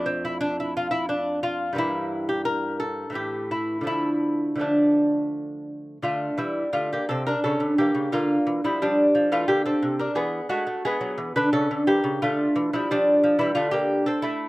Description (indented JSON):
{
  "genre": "classical, baroque-style dance for lute",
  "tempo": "88 BPM",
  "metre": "3/4",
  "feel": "rubato",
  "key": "D minor",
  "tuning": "A4 = 440 Hz",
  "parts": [
    { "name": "lute", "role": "solo", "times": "0.0-14.5 s", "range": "F2 to B4", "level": "-22 LUFS", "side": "equal", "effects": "slapback echo" }
  ],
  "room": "light reverb",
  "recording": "recorded outdoors, with no room sound",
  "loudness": "-21 LUFS",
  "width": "side -20 dB against mid",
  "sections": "0.0-6.0 A section; 6.0-14.5 B section",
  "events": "none",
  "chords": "0.0 Fmaj7; 1.8 Edim/G; 3.2 A5; 3.9 Dm; 6.0 D5; 7.4 A7/C#; 8.1 Bb/D; 10.2 E7; 11.5 A/C#; 12.2 Dm"
}